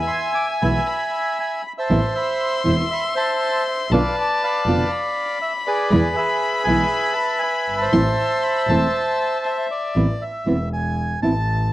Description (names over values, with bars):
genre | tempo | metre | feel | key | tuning
tango | 119 BPM | 4/4 | rubato | A harmonic minor | A4 = 440 Hz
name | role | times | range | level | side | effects
bandoneon | melody | 0.0-11.7 s | G#4 to D6 | -21 LUFS | right 1 dB | none
warm violin | second line | 0.0-10.0 s | E5 to C6 | -25 LUFS | left 4 dB | none
clear double bass | bass | 0.0-11.7 s | E1 to E2 | -23 LUFS | equal | none
nylon-string guitar | accompaniment | 0.6-11.3 s | B2 to F4 | -20 LUFS | right 1 dB | none
room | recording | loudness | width
light reverb, small room ambience | worn, warbling old tape, cassette tape, warbly pitch drift | -18 LUFS | side -15 dB against mid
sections
0.0-10.0 A section; 10.0-11.7 A section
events
none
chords
0.0 E; 1.9 Amadd9; 3.9 Bdim; 5.9 E; 7.9 Am; 10.0 Amadd9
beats
0.37 0.88 1.39 | 1.90 2.40 2.91 3.41 | 3.91 4.41 4.91 5.41 | 5.91 6.42 6.91 7.42 | 7.92 8.43 8.93 9.45 | 9.96 10.47 10.98 11.49